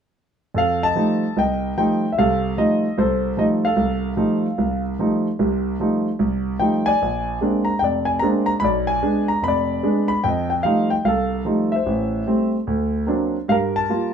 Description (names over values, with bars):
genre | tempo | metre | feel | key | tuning
solo jazz | 148 BPM | 4/4 | swing 65% on 8ths | F mixolydian | A4 = 440 Hz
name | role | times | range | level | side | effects
clear concert grand piano | solo | 0.5-14.1 s | F1 to B5 | -18 LUFS | equal | none
room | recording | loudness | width
wet studio reverb, RT60 0.5 s | minimal, uncompressed stereo recording | -18 LUFS | side -7 dB against mid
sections
0.5-14.1 A section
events
none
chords
0.5 F9; 7.0 Bb9; 8.6 Bdim7; 10.2 F9; 11.9 Am7; 12.7 Daug7; 13.5 Gm7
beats
| 0.54 0.94 1.35 1.75 | 2.16 2.56 2.96 3.37 | 3.77 4.18 4.58 4.99 | 5.39 5.79 6.20 6.60 | 7.01 7.41 7.82 8.22 | 8.62 9.03 9.43 9.84 | 10.24 10.65 11.05 11.46 | 11.86 12.27 12.67 13.08 | 13.48 13.88